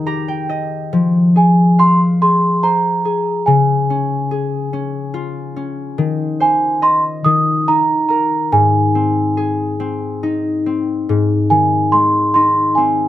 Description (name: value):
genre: children's music, lullaby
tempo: 47 BPM (dotted quarters)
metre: 6/8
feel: straight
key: Ab major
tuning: A4 = 440 Hz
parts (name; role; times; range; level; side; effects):
- large celesta; melody; 0.0-13.1 s; Ab5 to Eb6; -15 LUFS; right 2 dB; none
- concert harp; accompaniment; 0.0-13.1 s; Ab2 to Bb5; -16 LUFS; left 3 dB; none
room: light reverb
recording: close, detailed microphones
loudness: -13 LUFS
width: side -13 dB against mid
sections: 0.0-11.1 A section; 11.1-13.1 A section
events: harp fill 0.0-0.9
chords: 0.0 Eb; 0.9 Fm; 3.5 Db; 6.0 Ab/Eb; 7.2 Eb5; 8.5 Ab